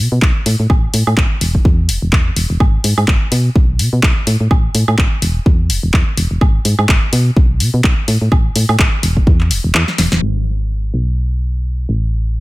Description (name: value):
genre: piano house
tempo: 126 BPM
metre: 4/4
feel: swing 57% on 16ths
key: unclear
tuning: A4 = 440 Hz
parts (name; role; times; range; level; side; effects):
- solid FM bass; bass; 0.0-12.4 s; E1 to B2; -15 LUFS; equal; sidechain pumping
- electronic kick drum; drums; 0.2-9.4 s; none; -13 LUFS; equal; small room ambience
- house drum kit; drums; 0.2-10.2 s; handclaps, hi-hat, snare drum, woodblock; -18 LUFS; equal; small room ambience
room: digital ambience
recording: low-pass filter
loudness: -12 LUFS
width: side -19 dB against mid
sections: 0.0-10.2 A section; 10.2-12.4 B section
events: kick drops out 9.7-10.2; drum fill 9.9-10.2; band accent 10.1; filter sweep 10.2-12.4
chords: none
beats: 0.22 | 0.70 1.17 1.65 2.13 | 2.60 3.08 3.56 4.03 | 4.51 4.98 5.46 5.94 | 6.41 6.89 7.37 7.84 | 8.32 8.79 9.27 9.75 | 10.22 10.70 11.17 11.65 | 12.13